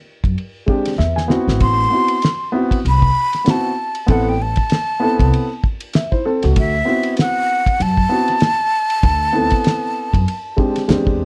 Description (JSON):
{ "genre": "hip hop, jazz-hop", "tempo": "97 BPM", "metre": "4/4", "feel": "swing 58% on 16ths", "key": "unclear", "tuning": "A4 = 440 Hz", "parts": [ { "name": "upright bass", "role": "bass", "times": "0.2-11.2 s", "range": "G#1 to F#2", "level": "-20 LUFS", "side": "equal", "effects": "none" }, { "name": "cloth-damped thuddy drum kit", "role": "drums", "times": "0.2-11.2 s", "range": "hi-hat, kick drum, ride cymbal, snare drum", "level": "-20 LUFS", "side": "equal", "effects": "none" }, { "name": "dark baby grand piano", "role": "accompaniment", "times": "0.7-11.2 s", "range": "G#3 to G#5", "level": "-22 LUFS", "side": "equal", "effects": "none" }, { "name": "breathy jazz flute", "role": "melody", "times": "1.6-10.9 s", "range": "E5 to C6", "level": "-21 LUFS", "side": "equal", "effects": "none" } ], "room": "light reverb", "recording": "worn, warbling old tape, cassette tape, warbly pitch drift", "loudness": "-17 LUFS", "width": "mono", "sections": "0.0-11.2 A section", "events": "grand piano fill 0.7-1.6; drum fill 1.0-1.6", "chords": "0.0 D7; 1.0 E; 1.6 Am69; 6.6 D13", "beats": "0.37 0.99 | 1.61 2.23 2.85 3.47 | 4.08 4.70 5.32 5.94 | 6.56 7.18 7.79 8.41 | 9.03 9.65 10.27 10.89" }